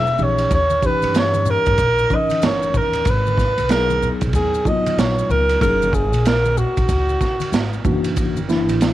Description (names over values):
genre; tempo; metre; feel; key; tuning
hip hop, jazz-hop; 94 BPM; 4/4; swing 62% on 16ths; F# major; A4 = 444 Hz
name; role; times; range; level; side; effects
breathy alto saxophone; melody; 0.0-7.8 s; F#4 to E5; -19 LUFS; equal; none
mellow tine electric piano; accompaniment; 0.0-8.9 s; E3 to A#4; -23 LUFS; left 1 dB; medium stereo tremolo
upright bass; bass; 0.0-8.9 s; E1 to G2; -22 LUFS; equal; tube saturation
maracas and congas; percussion; 0.1-8.9 s; none; -30 LUFS; left 4 dB; none
crunchy breakbeat drum kit; drums; 0.4-8.9 s; hi-hat, kick drum, ride cymbal, snare drum; -22 LUFS; right 2 dB; none
room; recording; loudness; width
light reverb, studio ambience; 1960s-style stereo, vinyl crackle; -16 LUFS; side -14 dB against mid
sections
0.0-8.9 A section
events
none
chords
0.0 N.C.; 0.5 D#7b9; 3.1 G#m7; 5.6 F#add9; 7.8 F#7alt